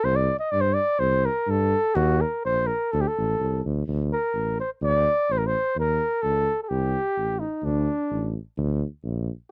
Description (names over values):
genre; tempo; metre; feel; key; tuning
balkan folk; 126 BPM; 2/4; straight; D phrygian dominant; A4 = 440 Hz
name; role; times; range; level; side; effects
mellow flugelhorn; melody; 0.0-8.3 s; D4 to Eb5; -26 LUFS; equal; none
mellow tuba; bass; 0.0-9.3 s; A1 to G2; -28 LUFS; equal; tube saturation
room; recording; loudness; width
little or no reverb; dry, close 1970s-style studio recording; -25 LUFS; mono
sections
0.0-3.9 A section; 3.9-9.5 B section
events
flugelhorn solo 3.9-9.5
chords
0.0 C5; 2.0 Eb5; 2.9 D5; 5.8 Eb5; 6.7 C5; 7.6 D5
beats
| 0.05 0.52 | 1.00 1.48 | 1.96 2.43 | 2.91 3.38 | 3.86 4.33 | 4.81 5.28 | 5.76 6.23 | 6.70 7.17 | 7.64 8.11 | 8.57 9.04